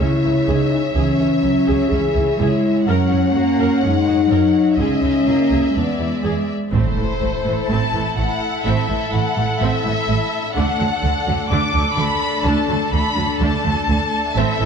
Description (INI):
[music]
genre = cinematic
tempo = 126 BPM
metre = 4/4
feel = straight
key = C# dorian, A dorian from 6.7 s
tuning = A4 = 437 Hz
[part]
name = warm symphonic violin section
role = melody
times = 0.0-14.7 s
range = C5 to D6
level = -24 LUFS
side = left 4 dB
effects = none
[part]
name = warm symphonic violin section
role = second line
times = 0.0-14.7 s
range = D4 to D#5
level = -27 LUFS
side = left 2 dB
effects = none
[part]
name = rich symphonic viola section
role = accompaniment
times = 0.0-14.7 s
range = E3 to A#4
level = -26 LUFS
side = right 2 dB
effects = none
[part]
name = dark French horn section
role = sustained chords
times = 0.0-14.7 s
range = A3 to A4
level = -20 LUFS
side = left 3 dB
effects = none
[part]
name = rich symphonic cello section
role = bass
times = 0.0-14.7 s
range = A2 to A#3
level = -24 LUFS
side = right 3 dB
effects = none
[part]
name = rich symphonic double bass section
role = bass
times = 0.0-14.7 s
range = A1 to F#2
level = -22 LUFS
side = right 4 dB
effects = none
[part]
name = impact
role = sound effects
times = 6.7-8.7 s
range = none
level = -27 LUFS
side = equal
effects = none
[sound]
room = wet concert hall reverb, RT60 1.9 s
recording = dark, warm production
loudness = -16 LUFS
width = side -6 dB against mid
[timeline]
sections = 0.0-6.7 A section; 6.7-14.7 B section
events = impact 6.7-8.7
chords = 0.0 C#m; 2.9 F#; 4.8 C#madd9; 5.7 E7; 6.7 Am; 10.6 D